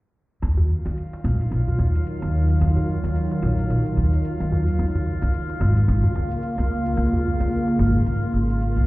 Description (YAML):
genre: organic downtempo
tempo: 110 BPM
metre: 4/4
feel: swing 58% on 16ths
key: Eb minor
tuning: A4 = 440 Hz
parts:
  - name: ethereal airy pad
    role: sustained chords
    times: 1.1-8.9 s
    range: Db3 to F4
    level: -26 LUFS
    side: equal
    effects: ensemble chorus, built-in reverb
  - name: upright bass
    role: bass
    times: 0.4-8.9 s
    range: Ab1 to Eb2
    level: -21 LUFS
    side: equal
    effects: none
  - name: shaker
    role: drums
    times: 0.4-8.9 s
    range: none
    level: -65 LUFS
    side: right 1 dB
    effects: none
  - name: djembe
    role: percussion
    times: 0.4-8.9 s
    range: none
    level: -26 LUFS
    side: equal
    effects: none
  - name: drifting glass-harmonics texture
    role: texture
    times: 0.7-8.9 s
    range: F4 to F5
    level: -33 LUFS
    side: left 1 dB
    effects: chorus, built-in reverb
room: light reverb, studio reverb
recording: heard muffled through a wall, stone room reverb, EQ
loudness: -19 LUFS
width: side -19 dB against mid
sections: 0.4-8.9 A section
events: none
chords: 0.4 Ebmadd9; 4.8 Db6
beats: | 0.42 0.97 1.52 2.06 | 2.61 3.15 3.70 4.24 | 4.79 5.33 5.88 6.42 | 6.97 7.52 8.06 8.61